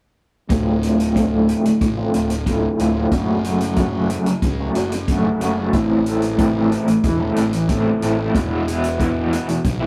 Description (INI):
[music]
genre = psychedelic rock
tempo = 92 BPM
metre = 4/4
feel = straight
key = unclear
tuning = A4 = 439 Hz
[part]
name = overdriven semi-hollow guitar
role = riff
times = 0.5-9.9 s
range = D2 to A4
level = -20 LUFS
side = equal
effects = tremolo, low-pass filter
[part]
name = fuzz fingered electric bass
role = bass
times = 0.5-9.9 s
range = D1 to C#2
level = -28 LUFS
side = equal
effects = overdrive
[part]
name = vintage drum kit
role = drums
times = 0.5-9.8 s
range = hi-hat, kick drum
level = -27 LUFS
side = equal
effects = none
[sound]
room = wet studio reverb, RT60 0.6 s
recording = rough rehearsal-room recording, tube saturation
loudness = -19 LUFS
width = mono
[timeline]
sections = 0.5-9.9 A section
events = filter sweep on overdriven electric guitar 0.5-9.9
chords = 0.5 Dm7; 3.1 F#m; 5.7 Am; 8.3 E